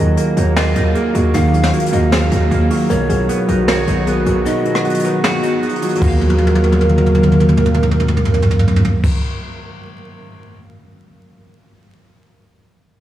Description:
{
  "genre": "hip hop, trap",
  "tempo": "154 BPM",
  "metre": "4/4",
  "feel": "half-time",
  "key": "Eb minor",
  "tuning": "A4 = 439 Hz",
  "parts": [
    { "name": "kalimba", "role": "melody", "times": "0.0-9.1 s", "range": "Eb4 to Bb4", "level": "-21 LUFS", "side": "right 1 dB", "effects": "low-pass filter, diffuse ambient delay" },
    { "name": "breathy mellow large pan pipes", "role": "second line", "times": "0.0-9.1 s", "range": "Bb4 to F5", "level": "-24 LUFS", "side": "equal", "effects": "diffuse ambient delay" },
    { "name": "semi-hollow electric guitar", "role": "accompaniment", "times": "0.0-9.1 s", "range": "B2 to F5", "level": "-20 LUFS", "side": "right 2 dB", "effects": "lush chorus, low-pass filter" },
    { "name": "warbly tape-like pad", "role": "sustained chords", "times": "0.0-9.1 s", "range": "Eb3 to F5", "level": "-22 LUFS", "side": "left 1 dB", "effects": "chorus, built-in reverb" },
    { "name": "distorted 808-style bass", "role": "bass", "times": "0.0-9.1 s", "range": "B1 to Eb2", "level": "-17 LUFS", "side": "equal", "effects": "distortion" },
    { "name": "jazz brush drum kit", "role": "drums", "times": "0.2-10.6 s", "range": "crash cymbal, hi-hat, kick drum, rim click, snare drum, toms", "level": "-19 LUFS", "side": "equal", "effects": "none" }
  ],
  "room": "moderate cathedral reverb, RT60 5.8 s",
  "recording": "dreamy mix soaked in reverb, vinyl crackle",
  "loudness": "-12 LUFS",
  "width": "side -12 dB against mid",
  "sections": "0.0-6.0 A section; 6.0-9.1 B section",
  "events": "kick muted 4.5-6.0; drum fill 6.2-9.0",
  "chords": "0.0 Ebmadd9; 2.9 B; 6.0 Ebmadd9",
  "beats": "0.17 0.56 0.95 | 1.34 1.73 2.12 2.51 | 2.90 3.29 3.68 4.07 | 4.46 4.85 5.24 5.63 | 6.02 6.41 6.80 7.19 | 7.58 7.97 8.36 8.74"
}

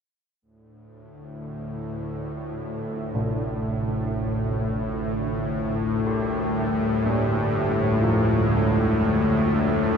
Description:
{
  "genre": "dark ambient drone",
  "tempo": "free time",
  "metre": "none",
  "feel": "none",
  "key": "unclear",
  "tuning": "A4 = 440 Hz",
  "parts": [
    { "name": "granular cloud pad", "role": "sustained chords", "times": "1.3-10.0 s", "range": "D4 to E5", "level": "-37 LUFS", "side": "right 1 dB", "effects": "none" },
    { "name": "bowed-like drone", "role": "drone", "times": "1.2-10.0 s", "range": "D2 to A2", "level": "-23 LUFS", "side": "left 1 dB", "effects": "built-in reverb" },
    { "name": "carillon bells", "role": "arpeggios", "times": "3.1-10.0 s", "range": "A2 to G4", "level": "-28 LUFS", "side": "right 1 dB", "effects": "ping-pong delay" }
  ],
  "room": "wet huge ambient reverb, RT60 6.9 s",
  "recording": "dreamy mix soaked in reverb",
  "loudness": "-22 LUFS",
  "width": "side -6 dB against mid",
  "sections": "0.4-10.0 A section",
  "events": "none",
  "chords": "0.4 Dmadd9",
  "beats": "free time"
}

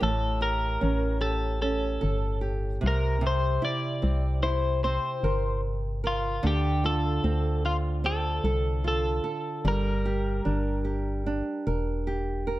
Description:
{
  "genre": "acoustic pop",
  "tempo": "75 BPM",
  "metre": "4/4",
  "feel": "straight",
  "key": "D minor",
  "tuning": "A4 = 440 Hz",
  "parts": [
    { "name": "twelve-string electric guitar", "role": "melody", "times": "0.0-12.0 s", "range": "F4 to D5", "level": "-30 LUFS", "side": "left 1 dB", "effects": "spring reverb" },
    { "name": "nylon-string guitar", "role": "accompaniment", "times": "0.0-12.6 s", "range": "A2 to Bb4", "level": "-30 LUFS", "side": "right 3 dB", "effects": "none" },
    { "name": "organ-like FM bass", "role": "bass", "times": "0.0-12.6 s", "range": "E1 to D2", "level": "-28 LUFS", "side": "left 1 dB", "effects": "none" }
  ],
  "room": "little or no reverb",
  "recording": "close, detailed microphones",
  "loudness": "-25 LUFS",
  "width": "side -16 dB against mid",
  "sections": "0.0-12.6 A section",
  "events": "none",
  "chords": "0.0 A7; 2.8 C7; 6.4 Dm7; 9.6 Gm",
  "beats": "| 0.01 0.82 1.62 2.42 | 3.22 4.03 4.83 5.63 | 6.43 7.24 8.04 8.84 | 9.65 10.45 11.26 12.06"
}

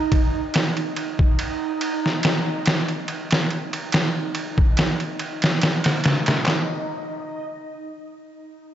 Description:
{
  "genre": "trip hop",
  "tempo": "71 BPM",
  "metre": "4/4",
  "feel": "swing 54% on 16ths",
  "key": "unclear",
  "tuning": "A4 = 440 Hz",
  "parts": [
    { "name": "backwards swelling texture", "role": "texture", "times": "0.0-6.5 s", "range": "Eb4", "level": "-29 LUFS", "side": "right 4 dB", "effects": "built-in reverb, lush chorus" },
    { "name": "trip hop sampler-style drum kit", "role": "drums", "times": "0.1-6.7 s", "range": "handclaps, kick drum, ride cymbal, snare drum", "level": "-20 LUFS", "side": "equal", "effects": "overdrive, studio reverb" }
  ],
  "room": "moderate plate reverb, RT60 2.4 s",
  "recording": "dreamy mix soaked in reverb, nothing above 7.8 kHz",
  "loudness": "-20 LUFS",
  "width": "side -11 dB against mid",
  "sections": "0.0-6.5 A section; 6.5-8.7 B section",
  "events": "none",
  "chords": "none",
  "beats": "0.54 1.39 2.23 | 3.08 3.92 4.77 5.61 | 6.46"
}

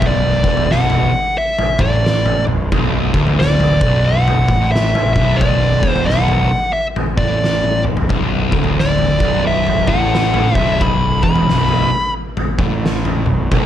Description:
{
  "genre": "stoner and doom metal",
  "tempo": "89 BPM",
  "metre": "4/4",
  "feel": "swing 62% on 8ths",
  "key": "B minor",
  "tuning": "A4 = 440 Hz",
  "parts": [
    { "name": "fuzz lead guitar", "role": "melody", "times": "0.0-12.1 s", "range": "D5 to B5", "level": "-18 LUFS", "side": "equal", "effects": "distortion, slapback echo" },
    { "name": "fuzz guitar", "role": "riff", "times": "0.0-13.7 s", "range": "B1 to A2", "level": "-17 LUFS", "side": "equal", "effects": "distortion" },
    { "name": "fuzz picked electric bass", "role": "bass", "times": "0.0-13.7 s", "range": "B0 to A1", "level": "-21 LUFS", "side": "equal", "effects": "overdrive" },
    { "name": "oversized low-tuned drum kit", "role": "drums", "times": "0.0-13.7 s", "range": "kick drum, snare drum, toms", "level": "-18 LUFS", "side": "equal", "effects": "none" }
  ],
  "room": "small room ambience",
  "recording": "none",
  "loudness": "-13 LUFS",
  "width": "side -11 dB against mid",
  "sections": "0.0-13.7 A section",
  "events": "drum fill 7.4-8.1",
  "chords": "0.0 Bm",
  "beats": "| 0.03 0.70 1.38 2.05 | 2.72 3.40 4.07 4.75 | 5.42 6.09 6.77 7.44 | 8.12 8.79 9.47 10.14 | 10.82 11.49 12.17 12.84 | 13.52"
}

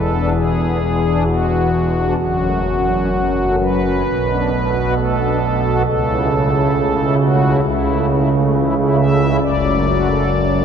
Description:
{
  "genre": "classical, chorale-style piece for pipe organ",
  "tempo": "66 BPM",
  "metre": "4/4",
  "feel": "rubato",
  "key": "A major",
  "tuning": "A4 = 438 Hz",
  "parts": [
    { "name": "pipe organ, strings celeste", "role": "solo", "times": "0.0-10.6 s", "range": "E1 to E5", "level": "-14 LUFS", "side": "equal", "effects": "none" }
  ],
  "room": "wet cathedral reverb, RT60 7.0 s",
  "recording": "minimal, uncompressed stereo recording",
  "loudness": "-14 LUFS",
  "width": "side -7 dB against mid",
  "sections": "0.0-10.6 A section",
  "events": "none",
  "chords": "0.0 E7; 2.2 F#m; 4.1 Bm7; 5.9 A/C#; 9.4 D/F#",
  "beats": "0.36 1.27 | 2.18 3.11 4.06 4.98 | 5.88 6.75 7.65 8.55 | 9.44 10.32"
}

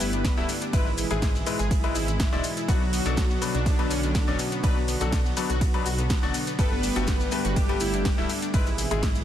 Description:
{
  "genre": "progressive house",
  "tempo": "123 BPM",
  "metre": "4/4",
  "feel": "straight",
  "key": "B minor",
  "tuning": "A4 = 441 Hz",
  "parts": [
    { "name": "soft supersaw", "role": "melody", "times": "0.0-8.2 s", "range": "D3 to B4", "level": "-32 LUFS", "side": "left 1 dB", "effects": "dub echo" },
    { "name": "warm analog pad", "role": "sustained chords", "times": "0.0-9.2 s", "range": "B2 to G#4", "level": "-34 LUFS", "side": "right 1 dB", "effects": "chorus, sidechain pumping" },
    { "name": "analog pluck", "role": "arpeggios", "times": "0.0-9.2 s", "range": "B3 to B4", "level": "-33 LUFS", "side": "left 1 dB", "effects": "chorus, sidechain pumping, ping-pong delay" },
    { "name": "dark detuned saw bass", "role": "bass", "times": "0.0-9.2 s", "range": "D1 to B1", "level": "-30 LUFS", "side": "right 1 dB", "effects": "sidechain pumping" },
    { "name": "deep house drum kit", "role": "drums", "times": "0.0-9.2 s", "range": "hi-hat, ride cymbal, snare drum", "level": "-33 LUFS", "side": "right 2 dB", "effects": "overdrive, sidechain pumping on hats, sidechain pumping on cymbals" },
    { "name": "maracas", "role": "percussion", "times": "0.0-9.2 s", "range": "none", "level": "-38 LUFS", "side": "left 6 dB", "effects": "none" },
    { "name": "electronic kick drum", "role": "drums", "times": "0.2-9.1 s", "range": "none", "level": "-25 LUFS", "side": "right 1 dB", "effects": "none" },
    { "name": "bright grand piano", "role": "stabs", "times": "0.4-9.1 s", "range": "G2 to E5", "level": "-32 LUFS", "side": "left 6 dB", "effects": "sidechain pumping, ping-pong delay" }
  ],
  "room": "light reverb, digital ambience",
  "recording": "dense, heavily limited modern master",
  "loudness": "-22 LUFS",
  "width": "side -11 dB against mid",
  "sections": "0.0-9.2 A section",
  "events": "none",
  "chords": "0.0 Gadd9; 0.7 E/G#; 2.7 Bm; 6.6 Gadd9; 8.5 E/G#",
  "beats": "0.25 | 0.73 1.22 1.71 2.20 | 2.69 3.17 3.66 4.15 | 4.64 5.12 5.61 6.10 | 6.59 7.08 7.56 8.05 | 8.54 9.03"
}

